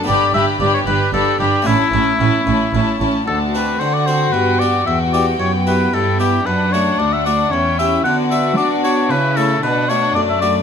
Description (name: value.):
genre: classical, baroque-style concerto movement with solo episodes.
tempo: 113 BPM.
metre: 3/4.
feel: straight.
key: D major.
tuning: A4 = 442 Hz.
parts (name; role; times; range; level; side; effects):
rich chamber violin section; melody; 0.0-10.6 s; D5 to B5; -25 LUFS; left 6 dB; none.
warm chamber violin section; second line; 0.0-10.6 s; D4 to G4; -22 LUFS; left 3 dB; none.
dark chamber viola section; accompaniment; 0.0-10.6 s; A3 to D4; -23 LUFS; right 2 dB; none.
harpsichord; accompaniment; 0.0-10.6 s; D2 to B4; -23 LUFS; equal; none.
clear oboe; melody; 0.1-10.5 s; E4 to F#5; -18 LUFS; left 2 dB; none.
rich chamber double bass section; bass; 0.1-3.1 s; G1 to A1; -22 LUFS; right 5 dB; none.
warm chamber cello section; bass; 0.1-10.6 s; D2 to D4; -21 LUFS; right 2 dB; none.
room: moderate recital hall reverb, RT60 1.4 s.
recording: close, detailed microphones.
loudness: -14 LUFS.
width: side -7 dB against mid.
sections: 0.0-3.3 A section; 3.3-10.6 A section.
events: none.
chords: 0.1 G; 1.7 A; 3.3 D7; 4.3 G; 4.9 Em; 6.5 D/F#; 7.5 C#dim/E; 8.0 Bm/D; 9.1 A/C#; 9.6 Bm7.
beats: | 0.08 0.61 1.14 | 1.67 2.21 2.74 | 3.28 3.81 4.34 | 4.87 5.40 5.93 | 6.46 6.99 7.52 | 8.05 8.58 9.11 | 9.63 10.16.